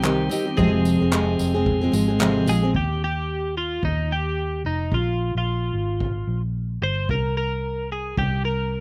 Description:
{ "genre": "acoustic pop", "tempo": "111 BPM", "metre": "4/4", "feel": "swing 60% on 16ths", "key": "Eb major", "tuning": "A4 = 440 Hz", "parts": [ { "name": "twelve-string electric guitar", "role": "melody", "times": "0.0-8.8 s", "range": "Eb4 to C5", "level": "-30 LUFS", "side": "equal", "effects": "none" }, { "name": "picked steel-string acoustic guitar", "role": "accompaniment", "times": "0.0-2.8 s", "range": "F2 to Ab4", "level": "-23 LUFS", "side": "equal", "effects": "none" }, { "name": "tonewheel organ", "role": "sustained chords", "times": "0.0-2.7 s", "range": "Eb3 to C4", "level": "-31 LUFS", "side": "equal", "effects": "stopped rotary speaker" }, { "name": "vintage muted fingered electric bass", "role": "bass", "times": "0.0-8.8 s", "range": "F1 to Eb2", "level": "-28 LUFS", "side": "equal", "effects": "none" }, { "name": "unplugged drum kit", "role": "drums", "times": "0.0-8.3 s", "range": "handclaps, kick drum, tambourine", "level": "-30 LUFS", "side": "equal", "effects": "none" } ], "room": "little or no reverb", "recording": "none", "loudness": "-23 LUFS", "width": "mono", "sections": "0.0-2.7 A section; 2.7-8.8 B section", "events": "none", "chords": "0.0 Cm; 0.6 Fm; 2.7 Eb; 4.9 Bb5; 7.1 N.C." }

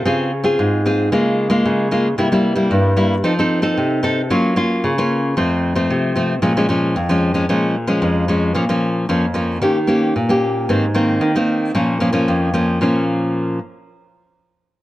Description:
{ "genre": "samba", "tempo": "113 BPM", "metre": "4/4", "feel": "straight", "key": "Bb minor", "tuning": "A4 = 437 Hz", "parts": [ { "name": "nylon-string guitar", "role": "solo", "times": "0.0-13.6 s", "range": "F2 to A4", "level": "-15 LUFS", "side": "equal", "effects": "none" } ], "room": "moderate spring reverb, RT60 1.7 s", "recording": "none", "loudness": "-15 LUFS", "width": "side -16 dB against mid", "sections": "0.0-8.6 A section; 8.6-12.8 B section; 12.8-14.8 C section", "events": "none", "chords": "0.1 Dbmaj7; 1.1 Bbm7/Db; 2.2 C7; 3.2 F7; 4.3 Gbmaj7; 5.4 F; 6.4 Bbm7; 8.6 Bbm; 9.6 Eb7; 10.7 Abadd9; 11.7 Bbm" }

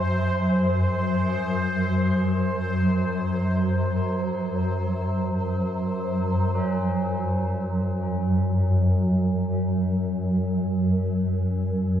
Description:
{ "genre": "dark ambient drone", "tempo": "free time", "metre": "none", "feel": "none", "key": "unclear", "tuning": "A4 = 440 Hz", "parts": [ { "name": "swarming drone", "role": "drone", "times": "0.0-12.0 s", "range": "F#2 to F#3", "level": "-22 LUFS", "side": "equal", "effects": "built-in reverb" }, { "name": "bubbling stepped-filter texture", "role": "texture", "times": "0.0-6.6 s", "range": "B#4", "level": "-30 LUFS", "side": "equal", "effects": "chorus, built-in reverb" }, { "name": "tubular bells", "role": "arpeggios", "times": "1.1-12.0 s", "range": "C#4 to G#4", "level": "-38 LUFS", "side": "left 2 dB", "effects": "diffuse ambient delay" } ], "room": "wet cathedral reverb, RT60 5.6 s", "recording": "worn, warbling old tape, cassette tape, warbly pitch drift", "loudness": "-22 LUFS", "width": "side -10 dB against mid", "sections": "0.0-6.5 A section; 6.5-12.0 B section", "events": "filter sweep on synth drone 6.5-12.0", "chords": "0.0 G#7/F#; 6.5 F#5" }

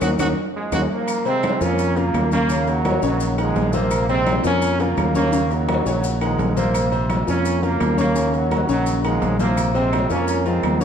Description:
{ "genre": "latin, salsa", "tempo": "170 BPM", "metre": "4/4", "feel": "straight", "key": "Bb minor", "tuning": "A4 = 439 Hz", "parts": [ { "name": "clear trumpet", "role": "melody", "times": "0.0-0.8 s", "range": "Gb4", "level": "-29 LUFS", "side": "right 3 dB", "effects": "none" }, { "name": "bright grand piano", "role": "accompaniment", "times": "0.0-10.8 s", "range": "C3 to Gb5", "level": "-23 LUFS", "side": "left 2 dB", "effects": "none" }, { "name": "fingered electric bass", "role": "bass", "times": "0.0-10.8 s", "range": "Bb1 to F2", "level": "-23 LUFS", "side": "right 1 dB", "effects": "none" }, { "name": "claves", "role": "percussion", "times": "0.0-10.8 s", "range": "none", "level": "-39 LUFS", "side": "left 9 dB", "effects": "none" }, { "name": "congas", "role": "percussion", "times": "0.0-10.8 s", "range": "none", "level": "-27 LUFS", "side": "left 2 dB", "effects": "none" }, { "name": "maracas", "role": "percussion", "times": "0.0-10.8 s", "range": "none", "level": "-37 LUFS", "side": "left 5 dB", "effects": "none" }, { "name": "timbales and agogo bells", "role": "percussion", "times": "0.0-10.8 s", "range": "none", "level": "-29 LUFS", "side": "right 4 dB", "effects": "none" }, { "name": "brilliant trombone section", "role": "melody", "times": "0.6-10.8 s", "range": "Eb3 to Db4", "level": "-23 LUFS", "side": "right 2 dB", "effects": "none" } ], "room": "wet large studio reverb, RT60 1.4 s", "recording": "dark, warm production", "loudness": "-17 LUFS", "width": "side -8 dB against mid", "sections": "0.0-1.1 A section; 1.1-10.8 B section", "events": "band accent 0.0-1.1", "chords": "0.0 Ebm7; 1.1 Bbmadd9; 2.5 Ebm7; 3.9 Bbmadd9" }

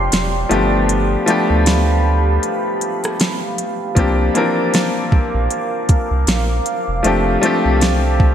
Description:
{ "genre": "contemporary R&B", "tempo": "78 BPM", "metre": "4/4", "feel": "swing 58% on 16ths", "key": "unclear", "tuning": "A4 = 440 Hz", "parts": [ { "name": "clear grand piano", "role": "accompaniment", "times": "0.0-8.3 s", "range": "E3 to Bb4", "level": "-18 LUFS", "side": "left 2 dB", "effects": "none" }, { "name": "deep dark ambient pad", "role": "sustained chords", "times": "0.0-8.3 s", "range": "G4 to D6", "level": "-23 LUFS", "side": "right 2 dB", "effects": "chorus, built-in reverb" }, { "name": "warm sub bass", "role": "bass", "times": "0.0-8.3 s", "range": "E1 to D2", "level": "-18 LUFS", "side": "equal", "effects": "none" }, { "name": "large celesta", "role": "texture", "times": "0.0-0.8 s", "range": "G5", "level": "-31 LUFS", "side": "right 1 dB", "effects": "none" }, { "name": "smooth R&B drum kit", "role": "drums", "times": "0.1-8.3 s", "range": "hi-hat, kick drum, rim click, snare drum", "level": "-18 LUFS", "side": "equal", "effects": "gated reverb" } ], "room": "moderate lush hall reverb, RT60 2.4 s", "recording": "bright 1980s-style digital production", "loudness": "-14 LUFS", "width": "side -9 dB against mid", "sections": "0.0-8.3 A section", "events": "break 0.0-4.0", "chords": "0.0 Bb69; 0.5 G7; 4.0 C9sus4; 7.0 F6" }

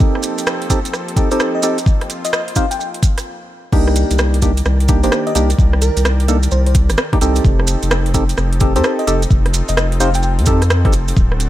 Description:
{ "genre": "UK garage, two-step garage", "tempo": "129 BPM", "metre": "4/4", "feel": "swing 64% on 16ths", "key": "unclear", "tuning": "A4 = 442 Hz", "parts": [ { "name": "warm analog pad", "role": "sustained chords", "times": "0.0-11.5 s", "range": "Eb3 to D5", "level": "-29 LUFS", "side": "left 1 dB", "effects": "chorus, sidechain pumping" }, { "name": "percussive organ stab", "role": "stabs", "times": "0.0-10.9 s", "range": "Bb3 to C5", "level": "-20 LUFS", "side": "right 1 dB", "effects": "chorus, tape echo" }, { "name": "electronic kick drum", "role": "drums", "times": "0.0-11.3 s", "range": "none", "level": "-14 LUFS", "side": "equal", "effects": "overdrive, small room ambience" }, { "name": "maracas", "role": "percussion", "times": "0.0-11.5 s", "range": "none", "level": "-27 LUFS", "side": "right 5 dB", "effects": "none" }, { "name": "garage drum kit", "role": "drums", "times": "0.2-11.5 s", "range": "crash cymbal, hi-hat, rim click", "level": "-22 LUFS", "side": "right 1 dB", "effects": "overdrive, high-pass filter on snare, small room ambience, high-pass filter on hats, high-pass filter on cymbals" }, { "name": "bell-like FM electric piano", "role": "melody", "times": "1.3-10.3 s", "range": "Bb4 to G5", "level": "-23 LUFS", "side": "left 2 dB", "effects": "chorus, tremolo, low-pass filter, tape echo" }, { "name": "saturated sub bass", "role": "bass", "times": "3.7-11.5 s", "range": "D1 to F2", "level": "-15 LUFS", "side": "equal", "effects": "none" } ], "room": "little or no reverb", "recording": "none", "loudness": "-13 LUFS", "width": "side -14 dB against mid", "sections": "0.0-3.7 A section; 3.7-11.5 B section", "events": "build-up 0.0-3.7; filter sweep on synth stab 0.0-3.7; filter sweep on FM electric piano 0.0-3.7; stop 3.3-3.7; drop 3.7-11.5", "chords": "0.0 F7; 3.7 Cm7; 7.4 F7" }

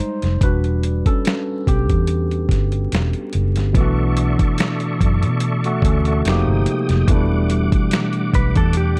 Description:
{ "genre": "R&B, neo-soul", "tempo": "72 BPM", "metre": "4/4", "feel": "swing 53% on 16ths", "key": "E dorian", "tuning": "A4 = 440 Hz", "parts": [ { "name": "barky tine electric piano", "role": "accompaniment", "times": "0.0-9.0 s", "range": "B2 to C5", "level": "-24 LUFS", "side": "equal", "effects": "lush chorus" }, { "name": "vintage muted fingered electric bass", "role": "bass", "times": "0.2-9.0 s", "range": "E1 to B2", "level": "-21 LUFS", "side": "equal", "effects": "none" }, { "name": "dusty soul sampler-style drum kit", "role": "drums", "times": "0.2-9.0 s", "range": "finger snaps, hi-hat, kick drum, snare drum", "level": "-22 LUFS", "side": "equal", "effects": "none" }, { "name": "tonewheel organ", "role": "sustained chords", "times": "3.8-9.0 s", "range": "G3 to Eb6", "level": "-30 LUFS", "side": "equal", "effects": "fast rotary speaker, chorus vibrato" }, { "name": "hollow-body jazz guitar", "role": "second line", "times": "8.3-9.0 s", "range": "G4 to B4", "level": "-27 LUFS", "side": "equal", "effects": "none" } ], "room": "little or no reverb", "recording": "dark, warm production, vinyl crackle", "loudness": "-18 LUFS", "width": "mono", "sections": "0.0-3.7 A section; 3.7-9.0 B section", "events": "tine electric piano solo 0.0-3.7", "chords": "0.4 Em9; 3.7 Bm11; 6.2 Fm9; 7.1 Em9" }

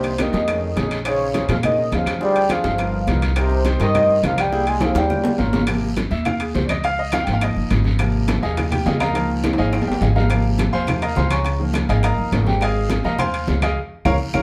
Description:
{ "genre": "Afro-Cuban jazz", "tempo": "208 BPM", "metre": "4/4", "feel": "straight", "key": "Ab major from 5.7 s", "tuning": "A4 = 440 Hz", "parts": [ { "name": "warm velvety synth lead", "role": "melody", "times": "0.0-5.4 s", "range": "C5 to Ab5", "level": "-24 LUFS", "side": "equal", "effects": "chorus" }, { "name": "warm trombone", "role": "second line", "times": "0.0-5.4 s", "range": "C3 to Ab3", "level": "-27 LUFS", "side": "equal", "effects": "none" }, { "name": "clear concert grand piano", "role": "accompaniment", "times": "0.0-14.4 s", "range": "C3 to Db6", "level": "-26 LUFS", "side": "equal", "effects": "none" }, { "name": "upright bass", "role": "bass", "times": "0.0-14.4 s", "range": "G1 to Bb2", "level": "-24 LUFS", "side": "equal", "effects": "none" }, { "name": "bongos", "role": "percussion", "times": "0.0-14.4 s", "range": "none", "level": "-34 LUFS", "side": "equal", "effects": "none" }, { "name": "timbales", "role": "percussion", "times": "0.0-14.4 s", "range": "none", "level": "-29 LUFS", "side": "equal", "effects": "none" }, { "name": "congas", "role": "percussion", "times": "0.1-14.4 s", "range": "none", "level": "-29 LUFS", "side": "equal", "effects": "none" }, { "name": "claves", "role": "percussion", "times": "0.2-14.4 s", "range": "none", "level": "-36 LUFS", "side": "equal", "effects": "none" }, { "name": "guiro", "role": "percussion", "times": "0.2-14.4 s", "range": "none", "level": "-38 LUFS", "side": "equal", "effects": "none" } ], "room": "moderate studio reverb, RT60 0.8 s", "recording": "band playing live in one room", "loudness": "-20 LUFS", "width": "mono", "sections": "0.0-5.7 A section; 5.7-14.4 B section", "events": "drum fill 4.8-5.7, 9.4-10.3, 14.1-14.4; grand piano solo 5.7-14.4; band accent 13.8-14.4", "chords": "0.5 F7alt; 1.1 Bbm11; 2.2 Dm7b5; 2.8 G7alt; 3.4 Cm7; 4.5 C7b13; 5.1 Eb7; 5.7 Ab69; 6.8 Db69; 8.0 Ab69; 9.1 Db69; 10.3 Ab69; 11.5 Db69; 12.6 Ab69; 13.8 Db6" }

